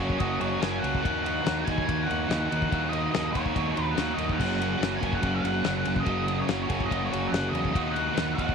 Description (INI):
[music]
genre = classic rock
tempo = 143 BPM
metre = 4/4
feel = straight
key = F# major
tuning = A4 = 442 Hz
[part]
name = octave-fuzz lead guitar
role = melody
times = 0.0-8.5 s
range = C#5 to G#5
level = -32 LUFS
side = left 2 dB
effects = distortion, tape echo
[part]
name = crunchy overdriven guitar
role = riff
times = 0.0-8.5 s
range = F#2 to F#4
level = -27 LUFS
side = right 1 dB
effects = none
[part]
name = growling fingered electric bass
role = bass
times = 0.0-8.5 s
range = F#1 to E2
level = -33 LUFS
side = right 1 dB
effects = overdrive
[part]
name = damped 70s drum kit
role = drums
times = 0.1-8.5 s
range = crash cymbal, kick drum, ride cymbal, snare drum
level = -32 LUFS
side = left 3 dB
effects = none
[sound]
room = light reverb, small room ambience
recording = 1960s-style stereo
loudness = -24 LUFS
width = side -6 dB against mid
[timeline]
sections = 0.0-8.5 A section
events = none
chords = 0.0 F#; 1.0 D#m; 4.4 F#; 7.7 D#m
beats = 0.20 0.62 | 1.04 1.46 1.88 2.30 | 2.72 3.14 3.56 3.98 | 4.39 4.81 5.23 5.65 | 6.07 6.49 6.91 7.33 | 7.75 8.17